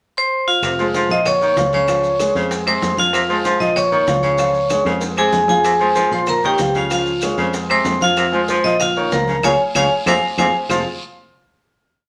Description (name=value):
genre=latin, salsa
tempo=190 BPM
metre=4/4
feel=straight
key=F minor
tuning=A4 = 443 Hz
part: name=vibraphone with hard mallets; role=melody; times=0.2-10.8 s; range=F4 to Eb6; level=-19 LUFS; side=equal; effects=none
part: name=clear baritone saxophone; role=second line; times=0.6-10.8 s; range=C3 to F3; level=-24 LUFS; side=equal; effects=none
part: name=fingered electric bass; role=bass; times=0.6-10.8 s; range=F1 to F2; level=-29 LUFS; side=equal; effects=none
part: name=bongos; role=percussion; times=0.6-10.8 s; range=none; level=-32 LUFS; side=equal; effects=none
part: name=claves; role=percussion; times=0.6-10.8 s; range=none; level=-32 LUFS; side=equal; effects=none
part: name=congas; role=percussion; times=0.6-10.8 s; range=none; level=-34 LUFS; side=equal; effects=none
part: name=guiro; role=percussion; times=0.6-10.8 s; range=none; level=-39 LUFS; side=equal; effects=none
part: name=maracas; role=percussion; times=0.6-10.8 s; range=none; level=-36 LUFS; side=equal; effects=none
part: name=clear upright piano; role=accompaniment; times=0.8-10.8 s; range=F3 to F5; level=-26 LUFS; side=equal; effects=none
room=wet studio reverb, RT60 0.9 s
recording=none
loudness=-17 LUFS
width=mono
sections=0.0-0.6 pickup bar; 0.6-10.7 montuno (vamp); 10.7-12.0 final chord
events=drum fill 4.9-5.6; band accent 9.4-10.7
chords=0.0 F5; 0.6 Fm; 1.3 Bbm; 1.9 Db; 2.5 Fm; 3.8 Bbm; 4.4 Db; 5.0 Fm; 6.3 Bbm; 6.9 Db; 7.5 Fm; 8.8 Bbm; 9.4 Db; 10.1 Fm; 10.7 F5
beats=0.00 0.32 | 0.63 0.94 1.26 1.57 | 1.88 2.20 2.51 2.82 | 3.14 3.45 3.76 4.08 | 4.39 4.70 5.02 5.33 | 5.65 5.96 6.28 6.59 | 6.91 7.22 7.54 7.86 | 8.17 8.49 8.80 9.12 | 9.44 9.75 10.07 10.39 | 10.70